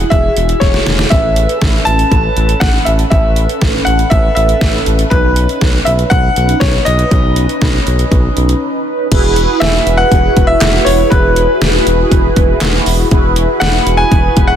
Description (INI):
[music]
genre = synth-pop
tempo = 120 BPM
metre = 4/4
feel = straight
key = E major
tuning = A4 = 440 Hz
[part]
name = clear baby grand piano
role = melody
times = 0.0-14.6 s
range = B4 to A5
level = -16 LUFS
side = left 1 dB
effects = tape echo
[part]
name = mellow synth brass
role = accompaniment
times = 0.0-14.6 s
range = C#4 to B4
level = -16 LUFS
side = right 1 dB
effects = chorus, phaser
[part]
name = smooth synth bass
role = bass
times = 0.0-14.5 s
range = E1 to B1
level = -15 LUFS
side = equal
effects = none
[part]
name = pop drum kit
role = drums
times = 0.1-14.5 s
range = crash cymbal, handclaps, hi-hat, kick drum, snare drum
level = -14 LUFS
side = equal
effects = none
[sound]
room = light reverb, digital ambience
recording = dense, heavily limited modern master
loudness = -9 LUFS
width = side -9 dB against mid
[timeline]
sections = 0.0-9.1 A section; 9.1-14.6 B section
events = drum fill 0.6-1.1; break 8.6-9.1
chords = 0.0 Eadd9; 1.1 Aadd9; 5.1 Badd9; 9.1 Eadd9